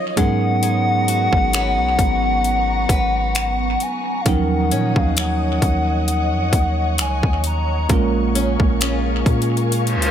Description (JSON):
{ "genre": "contemporary R&B", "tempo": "66 BPM", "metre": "4/4", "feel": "swing 54% on 16ths", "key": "Eb minor", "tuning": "A4 = 440 Hz", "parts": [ { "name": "hollow clarinet-like synth lead", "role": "melody", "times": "0.0-8.3 s", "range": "Eb5 to Bb5", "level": "-22 LUFS", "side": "left 1 dB", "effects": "chorus, analog delay" }, { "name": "bell-like tine electric piano", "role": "accompaniment", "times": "0.0-10.1 s", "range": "F3 to Bb4", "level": "-24 LUFS", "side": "right 6 dB", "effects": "analog delay" }, { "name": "ethereal airy pad", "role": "sustained chords", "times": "0.0-10.1 s", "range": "Cb4 to Eb6", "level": "-26 LUFS", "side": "left 1 dB", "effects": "ensemble chorus, built-in reverb" }, { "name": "picked old ladder-braced acoustic guitar", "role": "arpeggios", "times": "0.0-10.1 s", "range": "Bb2 to Cb5", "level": "-28 LUFS", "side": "left 6 dB", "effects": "analog delay" }, { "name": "long sustained 808-style bass", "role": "bass", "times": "0.2-10.1 s", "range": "Ab1 to Bb2", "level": "-21 LUFS", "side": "equal", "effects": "none" }, { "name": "trap drum kit", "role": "drums", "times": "0.2-10.1 s", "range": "finger snaps, hi-hat, kick drum", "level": "-20 LUFS", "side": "equal", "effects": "overdrive" }, { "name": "reverse cymbal", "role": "sound effects", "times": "9.9-10.1 s", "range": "none", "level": "-22 LUFS", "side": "equal", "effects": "none" } ], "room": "little or no reverb", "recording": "echo-heavy mix", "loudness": "-16 LUFS", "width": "side -9 dB against mid", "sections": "0.0-10.1 A section", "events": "reverse cymbal 9.9", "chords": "0.2 Abm11; 4.3 Ebm9; 7.9 Bbm7" }